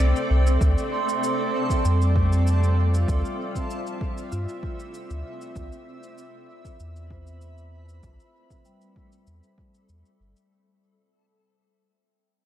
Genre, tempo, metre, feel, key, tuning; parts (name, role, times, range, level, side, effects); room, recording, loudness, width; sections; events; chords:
ambient dub; 97 BPM; 4/4; straight; A4 = 438 Hz
granular cloud pad; sustained chords; 0.0-10.5 s; C4 to B5; -30 LUFS; equal; built-in reverb
vibraphone with medium hard mallets; arpeggios; 0.0-10.9 s; G3 to C6; -33 LUFS; right 4 dB; low-pass filter, dub echo
soft dub sub bass; bass; 0.0-10.3 s; G1 to G2; -21 LUFS; equal
electronic finger snaps and cabasa; drums; 0.0-10.5 s; -38 LUFS; equal; dub echo
backwards swelling texture; texture; 0.0-10.5 s; A3 to A4; -34 LUFS; equal; built-in reverb
electronic kick drum; drums; 0.6-9.7 s; -28 LUFS; equal
little or no reverb; echo-heavy mix; -21 LUFS; side -12 dB against mid
0.0-10.5 A section
fade-out 0.0-10.5; filter sweep on vibraphone 0.0-10.5
0.0 Cadd9; 0.6 Dm9; 5.6 Cmaj9